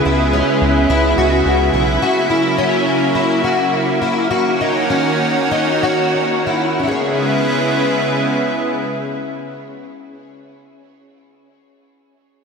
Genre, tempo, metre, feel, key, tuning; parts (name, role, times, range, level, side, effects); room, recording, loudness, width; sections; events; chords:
dream pop; 91-107 BPM; 4/4; straight; C# dorian; A4 = 440 Hz
lush unison pad; sustained chords; 0.0-10.1 s; C#3 to F#4; -16 LUFS; right 2 dB; chorus
fingerpicked plugged-in twelve-string acoustic guitar; arpeggios; 0.0-10.3 s; C#4 to C#5; -18 LUFS; left 3 dB; ensemble chorus, ping-pong delay
chorused synth bass; bass; 0.0-2.0 s; B1 to C#2; -18 LUFS; equal
wet lush hall reverb, RT60 2.9 s; dreamy mix soaked in reverb; -14 LUFS; side -5 dB against mid
0.0-6.8 A section; 6.8-9.4 B section
slowing down 2.0-6.8
0.0 C#m7; 2.0 F#7/C#; 4.3 D#m7; 6.8 C#m7